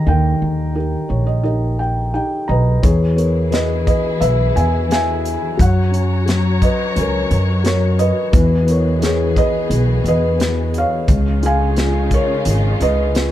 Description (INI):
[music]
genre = acoustic folk-pop ballad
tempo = 87 BPM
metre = 4/4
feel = straight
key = unclear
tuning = A4 = 439 Hz
[part]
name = felt-muted upright piano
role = melody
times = 0.0-13.3 s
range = C#3 to A#5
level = -18 LUFS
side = left 1 dB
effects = none
[part]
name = upright bass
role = bass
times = 0.1-13.3 s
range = G#1 to F#2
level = -17 LUFS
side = right 1 dB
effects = none
[part]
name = warm studio string section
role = sustained chords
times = 2.8-13.3 s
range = C#3 to A#5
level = -26 LUFS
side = left 1 dB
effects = none
[part]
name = natural country drum kit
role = drums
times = 2.8-13.3 s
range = hi-hat, kick drum, snare drum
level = -19 LUFS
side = equal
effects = none
[sound]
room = little or no reverb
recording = dark, warm production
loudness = -14 LUFS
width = side -12 dB against mid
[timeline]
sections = 0.0-2.8 A section; 2.8-13.3 B section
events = felt piano fill 0.8-2.8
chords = 0.0 D#; 2.8 Eadd9; 5.6 F#; 8.3 Eadd9; 11.1 C#add9